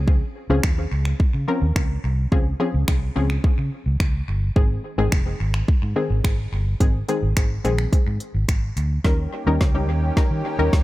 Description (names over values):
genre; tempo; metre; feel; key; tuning
dance-pop; 107 BPM; 4/4; straight; unclear; A4 = 440 Hz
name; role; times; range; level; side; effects
punchy chord stab; accompaniment; 0.0-10.8 s; Eb3 to Bb4; -26 LUFS; left 2 dB; chorus, sidechain pumping, analog delay
vintage muted fingered electric bass; bass; 0.0-10.8 s; F1 to Eb3; -22 LUFS; equal; sidechain pumping
deep house drum kit; drums; 0.1-10.8 s; finger snaps, hi-hat, kick drum, snare drum; -20 LUFS; equal; none
lush unison pad; sustained chords; 9.0-10.8 s; Eb3 to G4; -29 LUFS; equal; chorus, sidechain pumping
room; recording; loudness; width
little or no reverb; echo-heavy mix; -19 LUFS; side -17 dB against mid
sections
0.0-9.0 A section; 9.0-10.8 B section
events
build-up 9.0-10.8; drum fill 9.0-10.8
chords
0.0 Dbmaj7; 4.6 Ab; 9.0 Eb7